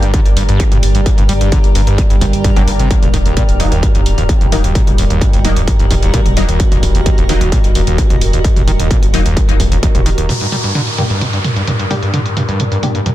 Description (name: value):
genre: driving peak-time techno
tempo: 130 BPM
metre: 4/4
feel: straight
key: G harmonic minor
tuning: A4 = 440 Hz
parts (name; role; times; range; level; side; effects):
- screaming distorted acid line; riff; 0.0-13.1 s; Eb2 to G3; -19 LUFS; equal; distortion, chorus, sidechain pumping, ping-pong delay
- rave stab; stabs; 0.0-12.9 s; Gb3 to G4; -23 LUFS; left 3 dB; chorus, built-in reverb, cassette tape, sidechain pumping, ping-pong delay
- warm sub bass; bass; 0.0-10.3 s; Eb1 to G1; -16 LUFS; equal; sidechain pumping, low-pass filter
- analog drone; drone; 0.0-13.1 s; G2 to G3; -22 LUFS; equal; chorus, sidechain pumping
- techno drum kit; drums; 0.0-13.1 s; hi-hat, toms; -21 LUFS; right 1 dB; sidechain pumping on hats, low-pass filter on hats, sidechain pumping on cymbals, low-pass filter on cymbals, sidechain pumping on toms, low-pass filter on toms, low-pass filter on room
- granular cloud pad; texture; 0.0-13.1 s; Gb4 to Bb5; -23 LUFS; equal; built-in reverb, sidechain pumping
- electronic kick drum; drums; 0.1-9.9 s; none; -13 LUFS; equal; distortion
- downlifter; sound effects; 10.3-13.1 s; none; -21 LUFS; left 1 dB; none
room: little or no reverb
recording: dense, heavily limited modern master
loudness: -10 LUFS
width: side -14 dB against mid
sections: 0.0-10.3 A section; 10.3-13.1 B section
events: drop 0.0-10.3; filter sweep on synth stab 10.3-13.1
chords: 0.0 Gm; 2.9 Ebm; 10.3 Gm